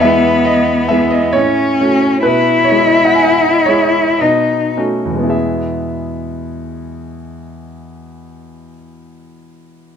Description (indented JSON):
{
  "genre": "classical, romantic duo for cello and grand piano",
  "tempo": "52-70 BPM",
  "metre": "3/4",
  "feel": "rubato",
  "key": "E major",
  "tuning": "A4 = 440 Hz",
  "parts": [
    { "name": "rich cello", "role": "melody", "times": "0.0-4.8 s", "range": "B3 to E4", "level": "-12 LUFS", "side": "left 2 dB", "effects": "none" },
    { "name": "clear concert grand piano", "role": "accompaniment", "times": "0.0-10.0 s", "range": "E2 to G#5", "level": "-15 LUFS", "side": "right 1 dB", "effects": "none" }
  ],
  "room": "moderate recital hall reverb, RT60 1.7 s",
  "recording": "close, detailed microphones",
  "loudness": "-11 LUFS",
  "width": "side -7 dB against mid",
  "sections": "0.0-5.3 A section; 5.3-8.6 B section",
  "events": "slowing down 0.0-5.3",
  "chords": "0.0 E; 1.4 F#m/A; 2.3 E/B; 4.2 B9; 5.3 E",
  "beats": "0.47 1.35 | 2.25 3.19 4.21 | 5.33 6.42 7.50"
}